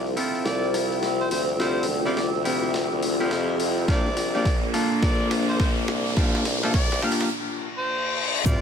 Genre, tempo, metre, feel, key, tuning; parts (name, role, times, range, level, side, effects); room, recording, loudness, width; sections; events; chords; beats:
glitch hop; 105 BPM; 4/4; swing 64% on 16ths; A4 = 435 Hz
dark analog pad; sustained chords; 0.0-7.3 s; Bb3 to E6; -32 LUFS; equal; chorus, phaser, sidechain pumping
formant-sweep wobble bass; bass; 0.0-8.6 s; Bb1 to F2; -28 LUFS; equal; chorus, high-pass filter
riser, reverse cymbal and sub drop; sound effects; 2.0-8.6 s; -30 LUFS; left 2 dB
deep dark ambient pad; texture; 0.0-8.6 s; Bb3 to C5; -31 LUFS; left 2 dB; chorus, built-in reverb, sidechain pumping
boom bap sampler-style drum kit; drums; 0.1-8.6 s; hi-hat, rim click, snare drum, toms; -32 LUFS; left 1 dB; overdrive, high-pass filter on snare, high-pass filter on hats, high-pass filter on toms, high-pass filter on room
clean electric guitar; stabs; 0.2-8.6 s; Bb3 to A4; -28 LUFS; left 1 dB; vintage 12-bit sampler grit, sidechain pumping, low-pass filter, ping-pong delay
mellow harmonica; melody; 0.5-8.6 s; A4 to F5; -31 LUFS; equal; low-pass filter, ping-pong delay
electronic kick drum; drums; 3.9-8.6 s; -23 LUFS; equal
cabasa; percussion; 8.5-8.6 s; -38 LUFS; right 4 dB
moderate studio reverb, RT60 0.6 s; -21 LUFS; side -7 dB against mid
0.0-8.5 A section
build-up 0.0-8.5; drum fill 0.0-7.3, 8.2; filter sweep on clean electric guitar 0.0-8.5; riser 2.0-7.3; break 7.3-8.5; reverse cymbal 7.3-8.5; impact 8.5
0.0 Dm11; 3.9 C9sus4
0.46 1.03 | 1.60 2.17 2.74 3.31 | 3.88 4.46 5.03 5.60 | 6.17 6.74 7.31 7.88 | 8.46